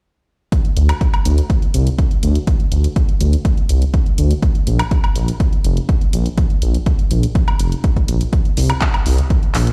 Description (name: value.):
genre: progressive house.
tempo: 123 BPM.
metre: 4/4.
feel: straight.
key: unclear.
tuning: A4 = 440 Hz.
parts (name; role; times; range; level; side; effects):
deep house drum kit; drums; 0.5-9.7 s; handclaps, hi-hat, woodblock; -28 LUFS; equal; overdrive.
electronic kick drum; drums; 0.5-9.4 s; none; -18 LUFS; equal; overdrive.
dark detuned saw bass; bass; 0.8-9.7 s; F1 to D2; -17 LUFS; equal; sidechain pumping.
room: digital ambience.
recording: played on a big sound system in a bare room, stone room reverb.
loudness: -16 LUFS.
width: mono.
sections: 0.5-9.7 A section.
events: none.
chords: none.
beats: | 0.52 1.01 1.50 1.99 | 2.47 2.96 3.45 3.94 | 4.42 4.91 5.40 5.89 | 6.38 6.86 7.35 7.84 | 8.33 8.81 9.30.